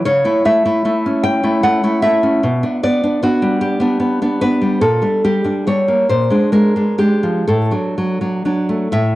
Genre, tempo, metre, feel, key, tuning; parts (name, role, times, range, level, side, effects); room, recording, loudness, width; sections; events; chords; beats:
romantic piece for solo classical guitar; 41-52 BPM (dotted quarters); 6/8; rubato; D major; A4 = 441 Hz
nylon-string guitar; solo; 0.0-9.2 s; A2 to G5; -13 LUFS; equal; cassette tape
light reverb, small room ambience; home recording on cassette; -13 LUFS; side -16 dB against mid
0.0-9.2 A section
0.0 A/C#; 2.4 G/B; 4.8 Gm/Bb; 6.1 Bb7; 7.5 D/A
| 0.03 1.22 | 2.43 3.62 | 4.82 6.08 | 7.47 8.90